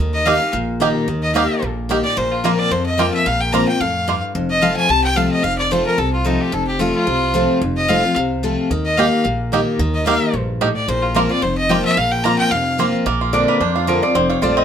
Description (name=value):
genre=bluegrass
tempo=220 BPM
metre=4/4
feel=swing 54% on 8ths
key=Bb major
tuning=A4 = 440 Hz
part: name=picked steel-string acoustic guitar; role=accompaniment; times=0.0-14.6 s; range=F2 to G4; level=-19 LUFS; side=left 2 dB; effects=none
part: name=upright bass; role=bass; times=0.0-14.6 s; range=F1 to F2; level=-24 LUFS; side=right 1 dB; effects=none
part: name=clear fiddle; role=melody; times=0.1-12.9 s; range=Eb4 to Bb5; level=-19 LUFS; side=left 1 dB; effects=none
part: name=bluegrass banjo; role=melody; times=0.3-4.1, 9.0-14.6 s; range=F3 to G4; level=-20 LUFS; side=right 5 dB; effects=none
part: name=lap resonator guitar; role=second line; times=13.3-14.6 s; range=F4 to Eb5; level=-19 LUFS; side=equal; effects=none
room=moderate studio reverb, RT60 0.8 s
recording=none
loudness=-15 LUFS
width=side -8 dB against mid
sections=0.0-4.3 A section; 4.3-13.1 A section; 13.1-14.6 B section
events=resonator guitar played with a steel bar solo 13.1-14.6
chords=0.0 Eb; 2.2 Bbsus2; 4.3 F; 8.7 Eb; 10.9 Bbsus2; 13.1 Bbadd9